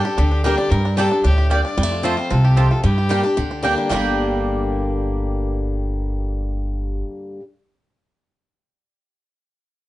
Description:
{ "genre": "bluegrass", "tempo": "225 BPM", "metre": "4/4", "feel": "straight", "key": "G minor", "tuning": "A4 = 440 Hz", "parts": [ { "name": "bluegrass banjo", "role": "melody", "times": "0.0-7.1 s", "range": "G3 to G4", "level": "-28 LUFS", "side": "right 3 dB", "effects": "analog delay" }, { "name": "clear fiddle", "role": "melody", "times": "0.0-3.6 s", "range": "G4 to D5", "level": "-26 LUFS", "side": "left 2 dB", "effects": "none" }, { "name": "picked swing-style acoustic guitar", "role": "accompaniment", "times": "0.0-7.4 s", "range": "F2 to G4", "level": "-23 LUFS", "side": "left 2 dB", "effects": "none" }, { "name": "upright bass", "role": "bass", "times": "0.2-7.0 s", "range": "G1 to G2", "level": "-19 LUFS", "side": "equal", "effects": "none" }, { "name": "mandolin", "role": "stabs", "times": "0.4-7.4 s", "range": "Bb3 to A5", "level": "-25 LUFS", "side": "right 4 dB", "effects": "none" } ], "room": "light reverb", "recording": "dark, warm production, nothing above 10.9 kHz", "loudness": "-17 LUFS", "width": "side -16 dB against mid", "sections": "0.0-3.9 A section; 3.9-6.0 B section", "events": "none", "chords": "0.0 Gm; 1.8 F; 2.8 Gm" }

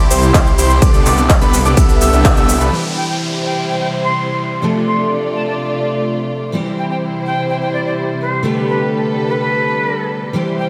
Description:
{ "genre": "EDM, festival progressive house", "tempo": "126 BPM", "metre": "4/4", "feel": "straight", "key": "C major", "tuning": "A4 = 440 Hz", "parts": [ { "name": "dark studio string section", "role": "sustained chords", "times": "0.0-10.7 s", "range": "C3 to D5", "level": "-23 LUFS", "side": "equal", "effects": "sidechain pumping" }, { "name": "clear concert grand piano", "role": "arpeggios", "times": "0.0-2.7 s", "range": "B5 to E6", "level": "-23 LUFS", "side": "equal", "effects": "vintage 12-bit sampler grit, sidechain pumping, delay" }, { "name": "dense compressed supersaw", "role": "riff", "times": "0.0-2.7 s", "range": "B3 to E5", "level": "-20 LUFS", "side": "equal", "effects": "sidechain pumping, delay" }, { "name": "detuned saw bass", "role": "bass", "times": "0.0-2.7 s", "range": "C2", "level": "-18 LUFS", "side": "equal", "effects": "tube saturation, sidechain pumping" }, { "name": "big-room dance drum kit", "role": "drums", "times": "0.1-2.7 s", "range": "handclaps, hi-hat, ride cymbal, shaker", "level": "-22 LUFS", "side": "equal", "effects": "overdrive, small room ambience" }, { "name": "electronic kick drum", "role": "drums", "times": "0.3-2.3 s", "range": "none", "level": "-14 LUFS", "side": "equal", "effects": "overdrive, small room ambience" }, { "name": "picked steel-string acoustic guitar", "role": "accompaniment", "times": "2.7-10.7 s", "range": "C3 to A4", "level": "-22 LUFS", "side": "equal", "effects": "ensemble chorus, sidechain pumping, delay" }, { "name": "downlifter", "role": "sound effects", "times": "2.7-6.5 s", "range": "none", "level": "-29 LUFS", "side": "equal", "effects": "none" }, { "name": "jazz flute", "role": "melody", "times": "3.0-10.7 s", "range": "B4 to C6", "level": "-23 LUFS", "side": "equal", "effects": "delay" } ], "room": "wet lush hall reverb, RT60 1.8 s, small room ambience", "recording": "dreamy mix soaked in reverb", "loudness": "-15 LUFS", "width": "mono", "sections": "0.0-2.7 A section; 2.7-10.7 B section", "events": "drop 0.0-2.7; band accent 2.2", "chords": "0.0 C; 0.8 Gadd9/C; 2.7 C; 4.6 Dm/C; 6.5 C; 8.4 Gadd9/C" }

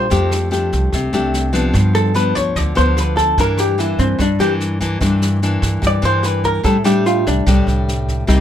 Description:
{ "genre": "bossa nova", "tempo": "147 BPM", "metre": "4/4", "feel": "straight", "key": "F major", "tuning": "A4 = 440 Hz", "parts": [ { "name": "vintage hollow-body jazz guitar", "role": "melody", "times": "0.0-7.6 s", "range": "C4 to D5", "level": "-18 LUFS", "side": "equal", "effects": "none" }, { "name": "nylon-string guitar", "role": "accompaniment", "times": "0.0-8.4 s", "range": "G2 to G4", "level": "-18 LUFS", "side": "left 2 dB", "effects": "none" }, { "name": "upright bass", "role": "bass", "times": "0.0-8.4 s", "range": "C2 to A2", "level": "-19 LUFS", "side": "right 1 dB", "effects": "none" }, { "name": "jazz brush drum kit", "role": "drums", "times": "0.1-8.4 s", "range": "kick drum, rim click, snare drum", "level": "-24 LUFS", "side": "right 1 dB", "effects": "none" } ], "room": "light reverb", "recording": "none", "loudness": "-14 LUFS", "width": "side -10 dB against mid", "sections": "0.0-8.4 A section", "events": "hollow-body jazz guitar solo 0.0-8.4", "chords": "0.1 F69; 1.7 G7; 3.4 Gm6; 6.6 F69 (rootless)" }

